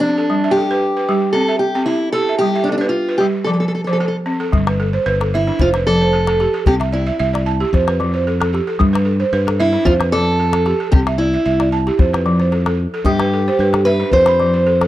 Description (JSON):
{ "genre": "west african traditional, West African string and xylophone music", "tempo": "113 BPM", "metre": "4/4", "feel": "swing 53% on 16ths", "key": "G mixolydian", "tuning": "A4 = 440 Hz", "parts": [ { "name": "fingerpicked steel-string acoustic guitar", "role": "melody", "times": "0.0-14.9 s", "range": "D4 to C5", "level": "-17 LUFS", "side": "equal", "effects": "none" }, { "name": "balafon", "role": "arpeggios", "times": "0.0-14.9 s", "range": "F3 to B5", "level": "-18 LUFS", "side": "right 2 dB", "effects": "none" }, { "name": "modern bright fingered electric bass", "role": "bass", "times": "4.5-14.9 s", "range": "F1 to G2", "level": "-19 LUFS", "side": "left 1 dB", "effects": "none" }, { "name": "calabash", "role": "percussion", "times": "4.5-14.9 s", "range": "none", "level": "-17 LUFS", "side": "left 2 dB", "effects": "none" } ], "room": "small room ambience", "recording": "dry, close 1970s-style studio recording", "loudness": "-14 LUFS", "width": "side -14 dB against mid", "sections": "0.0-4.5 A section; 4.5-14.9 B section", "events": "none", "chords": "0.3 G; 1.3 C; 2.4 G; 3.5 F; 4.5 G; 5.6 F; 6.7 C; 7.7 F; 8.8 G; 9.9 F; 10.9 C; 12.0 F; 13.1 G; 14.1 F" }